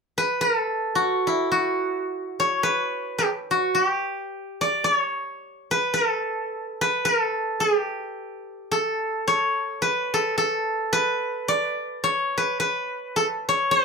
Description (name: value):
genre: hawaiian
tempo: 108 BPM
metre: 4/4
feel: swing 58% on 8ths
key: unclear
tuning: A4 = 440 Hz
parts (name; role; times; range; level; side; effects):
- koto; solo; 0.2-13.8 s; E4 to D5; -22 LUFS; equal; none
room: moderate studio reverb, RT60 0.6 s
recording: none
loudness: -22 LUFS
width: side -4 dB against mid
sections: 0.0-8.7 A section; 8.7-13.8 B section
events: none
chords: none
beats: 0.40 0.96 1.51 | 2.06 2.62 3.17 3.73 | 4.28 4.83 5.38 5.94 | 6.49 7.04 7.60 8.15 | 8.71 9.26 9.81 10.36 | 10.92 11.47 12.02 12.57 | 13.13 13.68